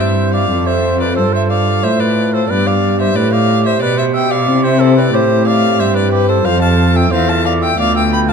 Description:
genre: classical, baroque-style sonata movement with continuo.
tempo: 91 BPM.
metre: 3/4.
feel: straight.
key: C major.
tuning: A4 = 440 Hz.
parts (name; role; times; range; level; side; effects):
clear violin; melody; 0.0-8.3 s; B4 to B5; -18 LUFS; left 6 dB; none.
warm oboe; second line; 0.0-8.3 s; G4 to G5; -19 LUFS; right 6 dB; none.
pipe organ, foundations; accompaniment; 0.0-8.3 s; D2 to B4; -17 LUFS; equal; none.
clear cello; bass; 0.0-8.3 s; D2 to C3; -15 LUFS; equal; none.
room: moderate recital hall reverb, RT60 1.3 s.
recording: dark, warm production.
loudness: -11 LUFS.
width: side -6 dB against mid.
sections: 0.0-8.3 A section.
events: none.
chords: 0.0 C; 0.5 F; 2.5 G; 4.5 C; 6.5 F; 7.8 Bdim/D.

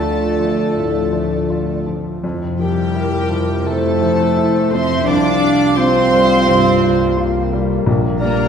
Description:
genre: cinematic, emotional film score for orchestra.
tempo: 80-88 BPM.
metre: 4/4.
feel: rubato.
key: F major.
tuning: A4 = 438 Hz.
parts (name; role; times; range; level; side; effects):
warm symphonic violin section; melody; 0.0-8.5 s; G5 to D6; -25 LUFS; left 3 dB; none.
mellow hollow silver concert flute; second line; 0.0-8.5 s; Bb4 to F5; -23 LUFS; equal; none.
warm clarinet; second line; 0.0-8.5 s; G4 to D5; -23 LUFS; equal; none.
warm symphonic violin section; second line; 0.0-8.5 s; G4 to D5; -25 LUFS; left 1 dB; none.
felt-muted upright piano; accompaniment; 0.0-8.5 s; Bb1 to F4; -21 LUFS; left 2 dB; none.
warm studio viola section; accompaniment; 0.0-8.5 s; G3 to D4; -23 LUFS; right 1 dB; none.
mellow French horn section; sustained chords; 0.0-8.5 s; Bb3 to G4; -23 LUFS; equal; none.
concert harp; arpeggios; 0.0-8.5 s; F2 to G5; -24 LUFS; left 6 dB; none.
dark symphonic double bass section; bass; 0.0-8.5 s; Bb1 to F2; -23 LUFS; right 4 dB; none.
rich symphonic cello section; bass; 0.0-8.5 s; G3 to D4; -24 LUFS; right 4 dB; none.
room: wet scoring stage reverb, RT60 1.7 s.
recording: heard from further back in the room.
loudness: -14 LUFS.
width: side -7 dB against mid.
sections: 0.0-8.5 A section.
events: none.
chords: 0.0 Dm; 2.2 Fmaj7; 5.1 C7sus4; 7.9 Bb6.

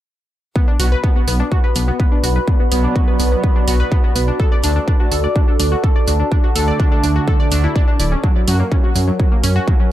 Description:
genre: melodic techno.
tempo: 125 BPM.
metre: 4/4.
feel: straight.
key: B dorian.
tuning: A4 = 440 Hz.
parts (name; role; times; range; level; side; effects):
analog pluck; arpeggios; 0.6-9.9 s; F#3 to D5; -22 LUFS; left 1 dB; chorus, sidechain pumping, analog delay.
electronic kick drum; drums; 0.6-9.8 s; none; -15 LUFS; equal; distortion, overdrive.
warbly tape-like pad; texture; 1.3-9.9 s; F#4 to B5; -25 LUFS; equal; chorus, built-in reverb, sidechain pumping.
analog synth brass; stabs; 0.8-8.6 s; B2 to F#4; -25 LUFS; right 2 dB; chorus, sidechain pumping, analog delay.
swelling detuned saw bass; bass; 0.8-9.6 s; D1 to F#2; -16 LUFS; equal; sidechain pumping.
electronic hi-hat; drums; 0.8-9.5 s; none; -23 LUFS; right 2 dB; none.
room: light reverb, digital ambience.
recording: echo-heavy mix.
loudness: -13 LUFS.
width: side -13 dB against mid.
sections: 0.6-9.9 A section.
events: none.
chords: 0.6 Bm; 4.4 D; 8.2 F#add9.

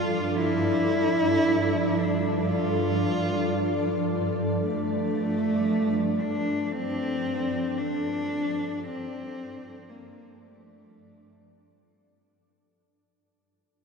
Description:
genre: ambient.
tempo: free time.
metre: none.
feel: none.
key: unclear.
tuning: A4 = 440 Hz.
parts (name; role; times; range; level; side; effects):
dark cello; melody; 0.0-12.0 s; A3 to F4; -27 LUFS; equal; shimmer reverb, ping-pong delay.
granular cloud pad; sustained chords; 0.0-13.1 s; G2 to D5; -27 LUFS; equal; built-in reverb, shimmer reverb.
room: wet cathedral reverb, RT60 6.5 s.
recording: in a vast, echoing space.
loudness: -24 LUFS.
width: side -5 dB against mid.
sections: 0.0-13.1 A section.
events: fade-out 1.8-13.1.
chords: 0.0 Dm/G.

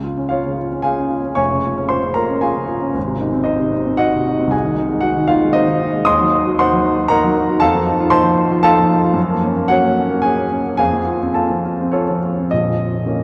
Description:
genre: classical, romantic character piece for solo piano.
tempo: 114 BPM.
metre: 3/4.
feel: rubato.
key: Db major.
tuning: A4 = 440 Hz.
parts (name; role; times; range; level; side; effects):
warm baby grand piano; solo; 0.0-13.2 s; Bb0 to Eb6; -17 LUFS; equal; none.
room: wet cathedral reverb, RT60 4.2 s.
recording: dark, warm production.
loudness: -17 LUFS.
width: mono.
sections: 0.0-12.5 A section.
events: none.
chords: 0.0 Db; 1.4 Db/F; 3.0 Ab; 4.5 Ab/C; 6.1 Cm7b5/Eb; 7.6 F7; 9.2 Gb; 10.8 F; 12.5 Bbm.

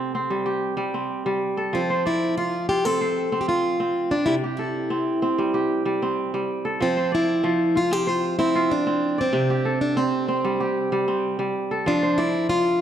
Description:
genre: west african traditional.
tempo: 95 BPM.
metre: 4/4.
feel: straight.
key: F major.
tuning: A4 = 438 Hz.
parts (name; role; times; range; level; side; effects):
picked plugged-in steel-string acoustic guitar; melody; 0.0-12.8 s; C4 to A4; -23 LUFS; equal; tape echo.
kora; arpeggios; 0.0-12.8 s; C3 to D5; -24 LUFS; right 2 dB; none.
room: moderate recital hall reverb, RT60 1.8 s.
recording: dark, warm production.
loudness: -21 LUFS.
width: side -10 dB against mid.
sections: 0.0-6.8 A section; 6.8-12.8 A section.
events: none.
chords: 0.0 C5; 1.7 F; 4.3 C; 6.8 F; 9.3 C5; 11.9 F.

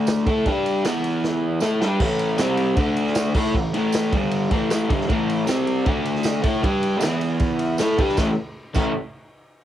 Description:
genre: garage rock duo or trio.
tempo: 155 BPM.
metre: 4/4.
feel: straight.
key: unclear.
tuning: A4 = 439 Hz.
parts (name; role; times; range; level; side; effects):
crunchy overdriven guitar; riff; 0.0-8.9 s; G2 to A4; -20 LUFS; equal; cassette tape.
vintage drum kit; drums; 0.1-8.8 s; crash cymbal, kick drum, ride cymbal, snare drum; -25 LUFS; right 1 dB; cassette tape.
tambourine; percussion; 0.1-8.9 s; none; -37 LUFS; right 7 dB; none.
room: studio reverb.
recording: home recording on cassette.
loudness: -19 LUFS.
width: side -11 dB against mid.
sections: 0.0-2.0 A section; 2.0-8.2 A section; 8.2-9.6 B section.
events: drum fill 1.2-2.0.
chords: 0.3 A5; 0.5 G5; 0.8 E5; 1.6 A5; 2.4 C5; 2.8 D5; 3.4 A5; 4.1 G5; 4.5 A5; 5.5 C5; 5.9 D5; 6.4 A5; 6.6 G5; 7.0 E5; 7.8 A5; 8.2 A.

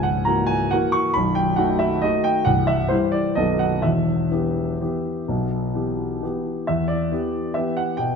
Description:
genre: classical, piano waltz.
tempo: 121-144 BPM.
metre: 3/4.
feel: rubato.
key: E minor.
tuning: A4 = 441 Hz.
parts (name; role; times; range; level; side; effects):
clear concert grand piano; solo; 0.0-8.2 s; B0 to C#6; -19 LUFS; equal; none.
room: moderate scoring stage reverb, RT60 2.0 s.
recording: none.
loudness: -19 LUFS.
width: side -6 dB against mid.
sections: 0.0-6.7 A section; 6.7-8.2 B section.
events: none.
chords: 0.0 F#7/C#; 1.2 B7; 2.5 C; 3.4 B7; 3.8 Em.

